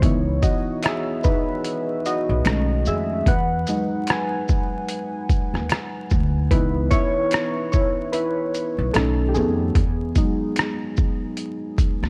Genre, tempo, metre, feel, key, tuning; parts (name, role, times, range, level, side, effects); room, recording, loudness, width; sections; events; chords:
lo-fi hip hop; 74 BPM; 4/4; swing 58% on 16ths; C# minor; A4 = 440 Hz
warbly lo-fi synth keys; accompaniment; 0.0-12.1 s; D#3 to G#5; -26 LUFS; equal; chorus, cassette tape, low-pass filter
upright bass; bass; 0.0-12.1 s; B1 to E#2; -26 LUFS; equal
boom bap sampler-style drum kit; drums; 0.0-12.1 s; hi-hat, kick drum, rim click, shaker; -24 LUFS; equal; vintage 12-bit sampler grit
finger snaps; percussion; 0.8-10.8 s; -40 LUFS; equal
little or no reverb; vinyl crackle; -22 LUFS; mono
0.0-12.1 A section
synth keys solo 0.0-12.1
0.0 C#m7; 2.5 B13; 3.3 Emaj9 (rootless); 6.5 C#m7; 8.9 B13; 9.8 Emaj9